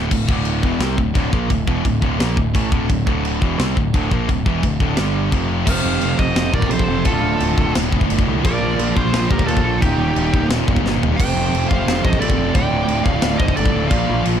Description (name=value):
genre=heavy metal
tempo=173 BPM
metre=4/4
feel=straight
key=D phrygian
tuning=A4 = 440 Hz
part: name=high-gain distorted guitar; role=riff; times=0.0-14.4 s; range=D2 to C4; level=-25 LUFS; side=left 12 dB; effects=distortion
part: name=sludgy distorted guitar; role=riff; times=0.0-14.4 s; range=D2 to C4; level=-23 LUFS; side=right 11 dB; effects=overdrive
part: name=overdriven picked electric bass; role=bass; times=0.0-14.4 s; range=D1 to Eb2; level=-22 LUFS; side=left 1 dB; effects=none
part: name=raw garage guitar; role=riff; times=0.1-14.4 s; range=D2 to C4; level=-26 LUFS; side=left 1 dB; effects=overdrive
part: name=tight metal drum kit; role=drums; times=0.1-14.3 s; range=china cymbal, crash cymbal, kick drum, snare drum, toms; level=-20 LUFS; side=left 1 dB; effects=none
part: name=high-gain lead guitar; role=melody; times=5.7-14.2 s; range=G4 to G5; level=-24 LUFS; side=right 2 dB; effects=distortion
part: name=high-gain lead guitar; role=second line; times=5.7-14.2 s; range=Eb4 to D5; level=-27 LUFS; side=right 1 dB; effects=distortion
part: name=chamber organ, sparkling flutes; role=sustained chords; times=5.7-14.4 s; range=D3 to D5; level=-32 LUFS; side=left 3 dB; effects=none
room=little or no reverb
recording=dark, warm production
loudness=-15 LUFS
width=side -9 dB against mid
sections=0.0-5.7 A section; 5.7-14.4 B section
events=drum fill 10.8-11.2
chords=0.0 Dm; 5.0 G5; 5.3 F5; 5.7 F; 7.1 Dm; 8.4 Bb; 9.8 Eb; 11.2 F; 12.6 Dm